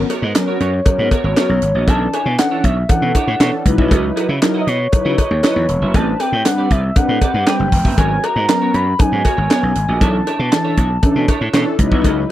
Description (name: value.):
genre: early-eighties boogie funk.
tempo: 118 BPM.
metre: 4/4.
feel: straight.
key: unclear.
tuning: A4 = 440 Hz.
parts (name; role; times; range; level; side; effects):
mellow synth brass; accompaniment; 0.0-12.3 s; E3 to B4; -20 LUFS; left 1 dB; chorus.
gritty slap bass; bass; 0.0-12.2 s; E1 to C#3; -18 LUFS; equal; overdrive.
semi-hollow electric guitar; riff; 0.1-12.2 s; B3 to E5; -25 LUFS; right 6 dB; analog chorus.
tight funk drum kit; drums; 0.1-12.2 s; handclaps, hi-hat, kick drum, snare drum; -15 LUFS; equal; none.
cowbell; percussion; 0.1-12.2 s; none; -27 LUFS; left 3 dB; none.
expressive synth lead; melody; 0.6-11.8 s; C#5 to B5; -20 LUFS; left 1 dB; chorus.
room: little or no reverb.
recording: dry, close 1970s-style studio recording.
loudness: -13 LUFS.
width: side -13 dB against mid.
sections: 0.0-12.3 A section.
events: none.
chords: 0.0 G#m11; 1.9 Bm11; 3.7 C#m11; 5.9 Am11; 8.0 G#m11; 10.0 Bm11; 11.8 C#m11.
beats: 0.35 0.86 1.37 | 1.88 2.38 2.89 3.40 | 3.91 4.42 4.93 5.44 | 5.94 6.45 6.96 7.47 | 7.98 8.49 8.99 9.50 | 10.01 10.52 11.03 11.54 | 12.05.